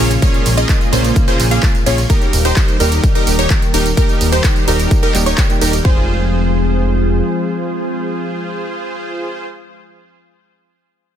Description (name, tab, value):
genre	EDM, festival progressive house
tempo	128 BPM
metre	4/4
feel	straight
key	F minor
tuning	A4 = 436 Hz
part	fingerpicked old ladder-braced acoustic guitar	accompaniment	0.0-9.5 s	Bb2 to Ab4	-26 LUFS	right 5 dB	sidechain pumping, ping-pong delay
part	lush unison pad	sustained chords	0.0-9.5 s	Db3 to Ab4	-22 LUFS	left 1 dB	chorus, sidechain pumping
part	wide unison pluck	arpeggios	0.0-9.5 s	Bb4 to F5	-23 LUFS	equal	wide subtle chorus, sidechain pumping, ping-pong delay
part	supersaw stab	riff	0.0-9.5 s	Bb3 to F5	-20 LUFS	right 1 dB	sidechain pumping, ping-pong delay
part	fat analog bass	bass	0.0-7.2 s	Eb1 to Bb1	-16 LUFS	equal	sidechain pumping
part	big-room dance drum kit	drums	0.0-5.8 s	handclaps, hi-hat, ride cymbal, tambourine	-21 LUFS	right 2 dB	overdrive
part	electronic kick drum	drums	0.2-6.0 s	none	-14 LUFS	equal	overdrive
room	little or no reverb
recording	dense, heavily limited modern master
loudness	-12 LUFS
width	side -10 dB against mid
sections	0.0-5.8 A section; 5.8-9.6 B section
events	drop 0.0-5.8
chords	0.0 Bbm7; 2.1 Eb; 5.8 Fm